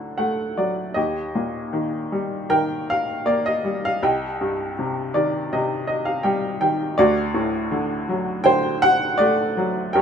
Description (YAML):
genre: classical, lyrical solo piano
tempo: 80 BPM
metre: 4/4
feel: rubato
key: unclear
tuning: A4 = 441 Hz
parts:
  - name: bright upright piano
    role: solo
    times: 0.0-10.0 s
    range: C2 to G5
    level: -20 LUFS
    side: equal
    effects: none
room: light reverb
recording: minimal, uncompressed stereo recording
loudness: -20 LUFS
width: side -7 dB against mid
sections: 0.0-10.0 A section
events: upright piano fill 0.0-1.0, 4.8-7.0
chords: 0.0 D7; 1.0 Eb; 4.0 Cm; 7.0 D7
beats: 0.19 | 0.97 1.74 2.51 3.26 | 4.02 4.77 5.51 6.24 | 6.97 7.71 8.45 9.20 | 9.95